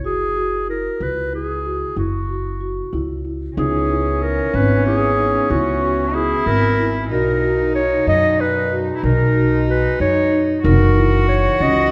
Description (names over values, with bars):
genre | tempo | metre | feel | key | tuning
contemporary instrumental, chamber music in an uneven meter | 187 BPM (eighths) | 11/8 | straight | F# mixolydian | A4 = 440 Hz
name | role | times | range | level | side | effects
marimba with soft mallets | arpeggios | 0.0-11.9 s | C#4 to F#4 | -26 LUFS | equal | none
upright bass | bass | 0.0-11.9 s | F#1 to F#2 | -23 LUFS | equal | none
mellow clarinet | melody | 0.1-11.9 s | F#4 to D#5 | -23 LUFS | equal | none
warm cello | second line | 3.6-11.9 s | C#4 to F#4 | -25 LUFS | equal | none
warm woodwind section | sustained chords | 3.6-11.9 s | A#2 to F#4 | -30 LUFS | equal | none
room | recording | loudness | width
wet recital hall reverb, RT60 1.6 s | dark, warm production | -18 LUFS | mono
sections
0.0-3.6 A section; 3.6-11.9 A section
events
none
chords
0.0 F#7(no3); 3.6 C#m9; 7.1 Bmaj7; 10.6 F#7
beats
| 0.04 0.36 0.68 1.00 1.32 1.65 1.97 2.29 2.61 2.93 3.25 | 3.58 3.90 4.22 4.54 4.86 5.18 5.50 5.83 6.15 6.47 6.79 | 7.11 7.43 7.75 8.07 8.39 8.72 9.04 9.36 9.68 10.00 10.32 | 10.64 10.96 11.28 11.60